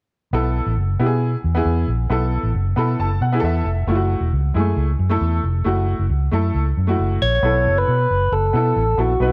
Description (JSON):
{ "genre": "uptempo 1960s-style soul", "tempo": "135 BPM", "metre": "4/4", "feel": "straight", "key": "unclear", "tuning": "A4 = 441 Hz", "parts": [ { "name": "clear upright piano", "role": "accompaniment", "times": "0.3-9.3 s", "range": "G#3 to B5", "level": "-25 LUFS", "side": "equal", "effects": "none" }, { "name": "vintage muted fingered electric bass", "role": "bass", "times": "0.3-9.3 s", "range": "E1 to B2", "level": "-21 LUFS", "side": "equal", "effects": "none" }, { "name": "percussive tonewheel organ", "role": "melody", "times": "7.2-9.3 s", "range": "F#4 to C#5", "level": "-21 LUFS", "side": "equal", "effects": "overdrive, stopped rotary speaker, slapback echo" } ], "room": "light reverb", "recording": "none", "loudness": "-19 LUFS", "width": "mono", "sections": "0.3-7.4 A section; 7.4-9.3 B section", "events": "upright piano fill 2.5-3.9", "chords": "0.3 B7sus4; 3.9 F#m7; 7.4 B7sus4" }